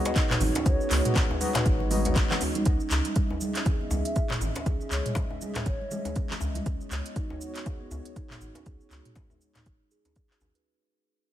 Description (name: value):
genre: afro house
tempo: 120 BPM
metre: 4/4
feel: swing 58% on 16ths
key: unclear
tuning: A4 = 441 Hz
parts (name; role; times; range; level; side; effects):
- mellow bass bansuri; melody; 0.0-1.1, 4.1-6.2 s; C#5 to E5; -38 LUFS; equal; dub echo
- dark analog pad; sustained chords; 0.0-10.6 s; B3 to E5; -38 LUFS; right 2 dB; chorus, sidechain pumping
- kalimba; arpeggios; 0.0-10.6 s; G#3 to C#5; -35 LUFS; equal; sidechain pumping, low-pass filter, dub echo
- overdriven tine electric piano; stabs; 0.0-2.4 s; B3 to D#5; -34 LUFS; left 4 dB; fast tremolo, sidechain pumping, dub echo
- afro-pop drum kit; drums; 0.1-10.6 s; handclaps, hi-hat, shaker, toms; -32 LUFS; equal; none
- congas; percussion; 0.1-6.6 s; none; -36 LUFS; right 3 dB; none
- djembe; percussion; 0.1-10.5 s; none; -35 LUFS; left 2 dB; none
- electronic kick drum; drums; 0.2-10.3 s; none; -27 LUFS; equal; overdrive
- round analog bass; bass; 0.4-10.5 s; G#1 to C#2; -30 LUFS; equal; sidechain pumping
room: light reverb, small room reverb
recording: none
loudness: -25 LUFS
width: side -12 dB against mid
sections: 0.0-2.7 A section; 2.7-10.7 B section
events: drop 0.0-2.7; fade-out 2.7-10.7; filter sweep on kalimba 2.7-10.7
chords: 0.0 B; 2.7 C#m; 6.7 B